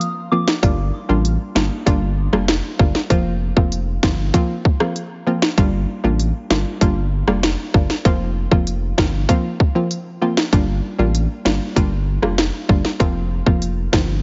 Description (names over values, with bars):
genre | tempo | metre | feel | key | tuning
dancehall | 97 BPM | 4/4 | straight | G minor | A4 = 439 Hz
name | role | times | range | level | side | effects
island pop drum kit | drums | 0.0-14.1 s | hi-hat, kick drum, rim click, snare drum | -20 LUFS | equal | overdrive
soft synth bell | melody | 0.3-0.5 s | D6 | -30 LUFS | equal | chorus, phaser, digital delay
analog pluck | accompaniment | 0.3-14.2 s | F3 to F4 | -24 LUFS | equal | chorus
saturated sub bass | bass | 0.6-14.2 s | F1 to A1 | -23 LUFS | equal | none
room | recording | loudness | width
light reverb, digital ambience | heavily compressed radio sound, nothing above 7.6 kHz | -19 LUFS | mono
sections
0.6-14.2 A section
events
break 0.0-0.6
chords
0.0 Fsus4; 0.6 Gm7; 3.1 Fsus4; 5.6 Gm7; 8.1 Fsus4; 10.5 Gm7; 13.0 Fsus4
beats
0.01 | 0.63 1.25 1.87 2.48 | 3.10 3.72 4.34 4.96 | 5.58 6.20 6.82 7.43 | 8.05 8.67 9.29 9.91 | 10.53 11.14 11.76 12.38 | 13.00 13.62